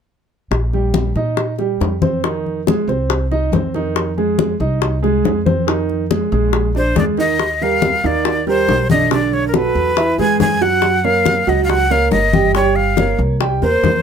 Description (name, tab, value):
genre	Afro-Cuban jazz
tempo	140 BPM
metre	4/4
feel	straight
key	Eb major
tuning	A4 = 440 Hz
part	upright bass	bass	0.5-14.0 s	G1 to Bb2	-21 LUFS	equal	none
part	bongos	percussion	0.5-14.0 s	none	-22 LUFS	left 7 dB	none
part	congas	percussion	0.5-14.0 s	none	-21 LUFS	left 6 dB	none
part	clear upright piano	accompaniment	0.7-14.0 s	D3 to G5	-18 LUFS	right 4 dB	none
part	breathy bright jazz flute	melody	6.8-14.0 s	Bb4 to G#5	-17 LUFS	left 1 dB	none
room	light reverb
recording	none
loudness	-14 LUFS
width	side -7 dB against mid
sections	0.5-7.4 A section; 7.4-14.0 B section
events	none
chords	0.5 Eb69/Bb; 2.2 Fm7; 6.5 Bb7; 7.4 Eb69; 9.1 Bm7; 10.0 Eadd9; 10.8 Gb6; 12.5 Gm7b5; 13.4 C7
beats	| 0.52 0.94 1.38 1.81 | 2.24 2.67 3.10 3.53 | 3.96 4.39 4.82 5.25 | 5.67 6.11 6.54 6.96 | 7.39 7.82 8.25 8.68 | 9.11 9.54 9.97 10.40 | 10.83 11.26 11.69 12.12 | 12.55 12.98 13.41 13.84